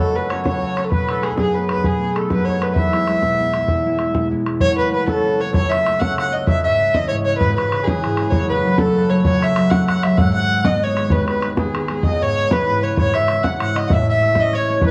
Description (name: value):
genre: celtic folk, Celtic slide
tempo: 129 BPM (dotted quarters)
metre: 12/8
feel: straight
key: unclear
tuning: A4 = 438 Hz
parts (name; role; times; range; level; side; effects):
- dark fiddle; melody; 0.0-14.9 s; G#4 to F#5; -22 LUFS; equal; plate reverb
- accordion; second line; 0.0-4.3, 12.0-14.9 s; G#4 to F#5; -30 LUFS; equal; slapback echo
- cimbalom; second line; 0.0-14.9 s; G#4 to F#5; -29 LUFS; equal; none
- concert harp; accompaniment; 0.0-14.9 s; F#1 to F#4; -23 LUFS; equal; none
- bodhran; percussion; 0.3-14.9 s; none; -24 LUFS; equal; none
room: wet small room reverb, RT60 0.5 s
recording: dark, warm production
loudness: -18 LUFS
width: mono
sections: 0.0-4.6 A section; 4.6-14.9 B section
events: none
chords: 0.0 F#m; 0.9 B7; 2.8 E; 4.6 F#m; 6.5 C#m; 8.3 F#m; 10.2 G#m; 12.0 C#m; 13.9 A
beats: 0.44 | 0.91 1.37 1.83 2.30 | 2.76 3.22 3.69 4.15 | 4.61 5.08 5.54 6.00 | 6.47 6.93 7.40 7.86 | 8.32 8.79 9.25 9.72 | 10.18 10.65 11.11 11.57 | 12.04 12.50 12.97 13.43 | 13.90 14.36 14.83